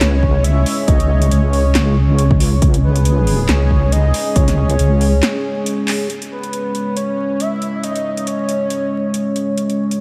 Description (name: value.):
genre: deep dubstep.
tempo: 138 BPM.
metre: 4/4.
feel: swing 56% on 16ths, half-time.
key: C# minor.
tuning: A4 = 440 Hz.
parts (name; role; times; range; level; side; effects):
breathy flute-like synth lead; melody; 0.0-9.4 s; B4 to E5; -25 LUFS; equal; analog chorus, dub echo.
dark analog pad; sustained chords; 0.0-10.0 s; G#3 to C#5; -23 LUFS; equal; chorus.
deep soft wobble bass; bass; 0.0-5.2 s; C#2; -16 LUFS; equal; chorus.
deep house drum kit; drums; 0.0-10.0 s; handclaps, hi-hat, snare drum; -25 LUFS; equal; overdrive, studio reverb.
electronic kick drum; drums; 0.2-4.5 s; none; -18 LUFS; equal; overdrive, studio reverb.
room: moderate cathedral reverb, RT60 4.6 s.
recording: dreamy mix soaked in reverb, vinyl crackle.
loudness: -16 LUFS.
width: mono.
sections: 0.0-6.1 A section; 6.1-10.0 B section.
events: drop 0.0-6.1; break 5.2-6.1; drum fill 5.9.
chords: 0.0 C#5.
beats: 0.01 0.44 | 0.88 1.31 1.75 2.18 | 2.62 3.05 3.49 3.92 | 4.36 4.79 5.23 5.66 | 6.10 6.53 6.97 7.40 | 7.83 8.27 8.71 9.14 | 9.57.